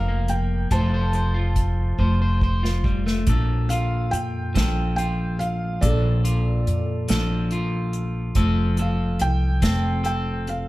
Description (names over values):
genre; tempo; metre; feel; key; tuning
acoustic folk-pop ballad; 47 BPM (dotted quarters); 6/8; straight; Bb major; A4 = 440 Hz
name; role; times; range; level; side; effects
felt-muted upright piano; melody; 0.0-10.7 s; A4 to A5; -30 LUFS; right 1 dB; plate reverb
electric guitar at the edge of break-up; accompaniment; 0.0-10.7 s; Bb2 to C5; -26 LUFS; left 1 dB; none
upright bass; bass; 0.0-10.7 s; F1 to F2; -22 LUFS; equal; none
unplugged drum kit; drums; 0.3-10.7 s; hi-hat, kick drum, snare drum; -24 LUFS; equal; none
room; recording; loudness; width
light reverb; none; -20 LUFS; side -18 dB against mid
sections
0.0-3.3 A section; 3.3-10.7 B section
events
drum fill 2.0-3.3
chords
0.0 Bb5/F; 0.7 F; 3.3 Bbmaj7; 8.4 F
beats
| 0.71 1.99 | 3.28 4.56 | 5.83 7.09 | 8.36 9.62